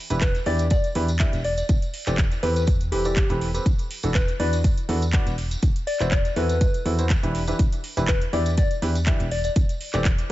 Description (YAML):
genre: piano house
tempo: 122 BPM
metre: 4/4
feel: swing 54% on 16ths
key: E minor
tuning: A4 = 440 Hz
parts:
  - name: clear upright piano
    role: riff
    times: 0.1-10.0 s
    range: E3 to E5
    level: -28 LUFS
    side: right 1 dB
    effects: sidechain pumping
  - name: solid FM bass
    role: bass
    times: 0.1-10.2 s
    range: E1 to E2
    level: -25 LUFS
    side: equal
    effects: sidechain pumping
  - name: house drum kit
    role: drums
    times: 0.1-10.3 s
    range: handclaps, hi-hat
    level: -32 LUFS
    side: right 1 dB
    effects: none
  - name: tambourine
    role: percussion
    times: 0.1-10.3 s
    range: none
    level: -41 LUFS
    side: right 1 dB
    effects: none
  - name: soft struck synth lead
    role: melody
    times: 0.2-9.5 s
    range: G4 to D5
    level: -28 LUFS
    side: left 3 dB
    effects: chorus
  - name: electronic kick drum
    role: drums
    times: 0.2-10.2 s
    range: none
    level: -21 LUFS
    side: equal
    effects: none
room: digital ambience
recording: nothing above 7.9 kHz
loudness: -20 LUFS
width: side -16 dB against mid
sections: 0.0-10.3 A section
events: none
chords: 0.0 Em7; 1.7 Am9/E; 3.7 Bm7/E; 5.4 F#m7b5/E; 7.3 Em7; 9.6 Am7/E